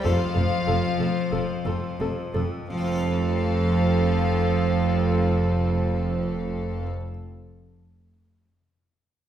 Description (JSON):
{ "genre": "classical, baroque-style concerto movement with solo episodes", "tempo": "85 BPM", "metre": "4/4", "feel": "straight", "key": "F major", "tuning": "A4 = 441 Hz", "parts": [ { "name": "rich cello", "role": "melody", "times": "0.0-6.9 s", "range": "F3", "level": "-27 LUFS", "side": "right 2 dB", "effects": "none" }, { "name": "rich chamber violin section", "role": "melody", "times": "0.0-6.9 s", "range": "F5", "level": "-33 LUFS", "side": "left 5 dB", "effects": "none" }, { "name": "warm studio violin section", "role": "second line", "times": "0.0-6.9 s", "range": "A4 to C5", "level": "-32 LUFS", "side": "left 1 dB", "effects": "none" }, { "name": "dark chamber viola section", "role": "accompaniment", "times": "0.0-6.8 s", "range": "C4 to A4", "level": "-31 LUFS", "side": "right 2 dB", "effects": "none" }, { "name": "harpsichord", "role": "accompaniment", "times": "0.0-7.1 s", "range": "F2 to F5", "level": "-36 LUFS", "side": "equal", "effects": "none" }, { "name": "rich chamber cello section", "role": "bass", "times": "0.0-6.9 s", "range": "F2", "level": "-27 LUFS", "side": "equal", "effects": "none" }, { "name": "rich chamber double bass section", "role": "bass", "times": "0.1-6.9 s", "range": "F1", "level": "-30 LUFS", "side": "right 1 dB", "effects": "none" } ], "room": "wet recital hall reverb, RT60 1.4 s", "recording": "heard from further back in the room", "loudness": "-22 LUFS", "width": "side -10 dB against mid", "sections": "0.0-2.7 A section; 2.7-8.4 B section", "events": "slowing down 0.0-2.7", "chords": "0.1 F" }